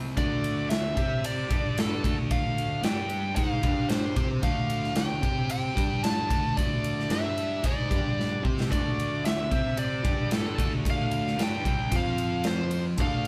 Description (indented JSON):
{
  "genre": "hard rock",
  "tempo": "112 BPM",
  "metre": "4/4",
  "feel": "straight",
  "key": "D minor",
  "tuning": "A4 = 440 Hz",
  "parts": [
    { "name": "cranked stack guitar", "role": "riff", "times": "0.0-13.3 s", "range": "C3 to C5", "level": "-39 LUFS", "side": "equal", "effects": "overdrive, phaser" },
    { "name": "overdriven semi-hollow guitar", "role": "riff", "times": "0.0-13.3 s", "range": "C3 to C5", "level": "-36 LUFS", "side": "equal", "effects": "none" },
    { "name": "fuzz fingered electric bass", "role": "bass", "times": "0.0-13.3 s", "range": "C2 to C3", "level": "-37 LUFS", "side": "equal", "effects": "overdrive" },
    { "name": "bluesy overdriven lead guitar", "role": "melody", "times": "0.2-13.3 s", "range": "A4 to A5", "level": "-34 LUFS", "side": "equal", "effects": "distortion" },
    { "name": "big rock drum kit", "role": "drums", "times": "0.2-13.3 s", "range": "kick drum, ride cymbal, snare drum", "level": "-30 LUFS", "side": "equal", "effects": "none" }
  ],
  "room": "light reverb",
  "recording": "band playing live in one room",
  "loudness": "-27 LUFS",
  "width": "mono",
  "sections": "0.2-13.3 A section",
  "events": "drum fill 8.2-8.7",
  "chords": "0.2 D5; 1.0 C5; 1.5 G5; 2.0 Dm; 2.8 G5; 3.4 Fm7/Ab; 3.6 G5; 4.2 Dm; 5.2 C5; 5.8 G5; 6.3 D5; 7.1 G5; 7.6 G#5; 7.9 G5; 8.4 D5; 9.5 C5; 10.0 G5; 10.6 Dm; 11.9 F5",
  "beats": "| 0.17 0.70 1.23 1.76 | 2.30 2.83 3.36 3.90 | 4.43 4.96 5.50 6.03 | 6.57 7.10 7.64 8.17 | 8.71 9.24 9.78 10.31 | 10.84 11.38 11.91 12.45 | 12.98"
}